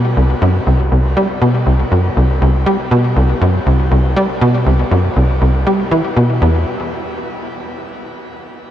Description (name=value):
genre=ambient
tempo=120 BPM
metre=4/4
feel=straight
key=unclear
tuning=A4 = 440 Hz
part: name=tight sequencer bass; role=solo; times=0.0-6.6 s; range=C2 to G3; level=-12 LUFS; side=equal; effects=wide subtle chorus, ping-pong delay
room=wet shimmer reverb, RT60 8.1 s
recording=worn, warbling old tape, cassette tape, warbly pitch drift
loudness=-12 LUFS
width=side -11 dB against mid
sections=0.0-6.4 A section; 6.4-8.7 B section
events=none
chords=none